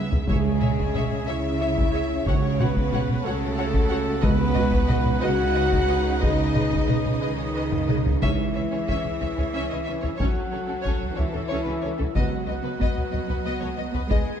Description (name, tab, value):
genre	cinematic, epic orchestral film score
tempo	61 BPM (dotted quarters)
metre	6/8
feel	straight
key	C# minor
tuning	A4 = 440 Hz
part	warm symphonic violin section	melody	0.0-14.2 s	A4 to F#5	-35 LUFS	left 4 dB	none
part	warm studio viola section	accompaniment	0.0-14.2 s	G#3 to C#5	-35 LUFS	right 3 dB	none
part	rich studio string section	sustained chords	0.0-14.4 s	B3 to F#5	-35 LUFS	left 1 dB	none
part	rich symphonic cello section	bass	0.0-14.4 s	C#3 to G#3	-31 LUFS	right 3 dB	none
part	warm symphonic double bass section	bass	0.0-14.2 s	C#2	-30 LUFS	right 3 dB	none
part	taiko ensemble	drums	0.1-14.4 s	none	-25 LUFS	equal	none
part	warm symphonic violin section	second line	0.3-14.2 s	F#4 to F#5	-35 LUFS	equal	none
part	mellow French horn section	sustained chords	0.3-14.4 s	G#3 to G#4	-30 LUFS	left 4 dB	none
part	dark trumpet section	stabs	0.3-14.4 s	G#4 to G#5	-32 LUFS	right 1 dB	none
part	timpani	percussion	0.3-5.2, 8.2-13.1 s	C#3	-29 LUFS	right 2 dB	none
room	moderate scoring stage reverb, RT60 1.6 s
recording	dark, warm production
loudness	-21 LUFS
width	side -8 dB against mid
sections	0.0-8.2 A section; 8.2-14.4 B section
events	drum fill 0.0, 7.7-8.2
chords	0.3 C#m; 2.3 F#m/C#; 4.2 B/C#; 6.2 G#m/C#; 8.2 C#m; 10.2 F#m/C#; 12.2 B/C#